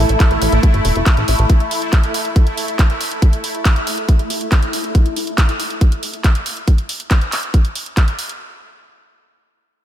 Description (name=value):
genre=psychedelic trance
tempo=139 BPM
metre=4/4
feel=straight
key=unclear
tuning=A4 = 440 Hz
part: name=bubbling stepped-filter texture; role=sustained chords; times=0.0-5.0 s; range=A3 to E4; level=-22 LUFS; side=equal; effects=chorus, built-in reverb, sidechain pumping
part: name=plucky analog bass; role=bass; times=0.0-1.5 s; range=E1 to A1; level=-16 LUFS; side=equal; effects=none
part: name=deep dark ambient pad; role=texture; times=0.0-1.5 s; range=A3 to A5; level=-27 LUFS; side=right 1 dB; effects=chorus, built-in reverb, sidechain pumping
part: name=drum and bass drum kit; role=drums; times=0.1-8.4 s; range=handclaps, hi-hat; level=-22 LUFS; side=right 1 dB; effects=none
part: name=electronic kick drum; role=drums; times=0.2-8.1 s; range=none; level=-12 LUFS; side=equal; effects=none
room=light reverb, digital ambience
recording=none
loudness=-14 LUFS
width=side -11 dB against mid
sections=0.0-8.4 A section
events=none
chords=0.0 A5